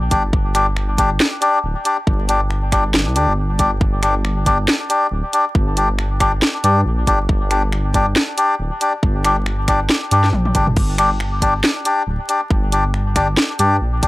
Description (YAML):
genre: deep dubstep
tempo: 138 BPM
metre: 4/4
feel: swing 57% on 16ths, half-time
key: G minor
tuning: A4 = 443 Hz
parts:
  - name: dark detuned saw bass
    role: bass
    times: 0.0-14.1 s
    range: D1 to G2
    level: -19 LUFS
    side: equal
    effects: tube saturation
  - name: melodica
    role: stabs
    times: 0.1-14.1 s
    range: D4 to D5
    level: -18 LUFS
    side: left 1 dB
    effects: dub echo
  - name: electronic kick drum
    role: drums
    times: 0.1-14.1 s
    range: none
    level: -18 LUFS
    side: equal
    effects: overdrive
  - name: garage drum kit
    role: drums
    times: 0.1-14.1 s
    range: crash cymbal, finger snaps, hi-hat, snare drum, toms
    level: -19 LUFS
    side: equal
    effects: overdrive
room: little or no reverb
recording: dry, gritty hardware recording, transformer saturation, vinyl crackle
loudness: -14 LUFS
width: side -19 dB against mid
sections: 0.0-14.1 A section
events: drum fill 10.3-10.8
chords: 0.0 G5